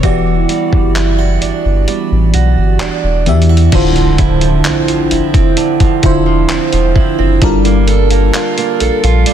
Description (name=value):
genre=contemporary R&B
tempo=65 BPM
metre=4/4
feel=straight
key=unclear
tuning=A4 = 441 Hz
part: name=FM electric piano with soft pad layer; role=accompaniment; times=0.0-9.3 s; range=D3 to E5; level=-15 LUFS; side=left 2 dB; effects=chorus, phaser
part: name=picked steel-string acoustic guitar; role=arpeggios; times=0.0-9.3 s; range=D3 to C#5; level=-16 LUFS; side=right 9 dB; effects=digital delay
part: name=saturated sub bass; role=bass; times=0.0-9.2 s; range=D1 to E2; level=-13 LUFS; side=equal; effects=none
part: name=dusty soul sampler-style drum kit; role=drums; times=0.0-9.3 s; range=crash cymbal, handclaps, hi-hat, kick drum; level=-15 LUFS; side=equal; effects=soft clipping on snare
part: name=impact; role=sound effects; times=3.8-7.4 s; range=none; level=-23 LUFS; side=left 1 dB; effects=none
room=digital ambience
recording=dense, heavily limited modern master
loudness=-9 LUFS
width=side -9 dB against mid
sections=0.0-3.7 A section; 3.7-9.3 B section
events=kick muted 1.9-3.7; impact 3.7-7.4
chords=0.0 Em9; 3.7 Dm9; 7.4 Gm9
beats=| 0.03 0.96 1.88 2.80 | 3.73 4.65 5.57 6.49 | 7.42 8.34 9.26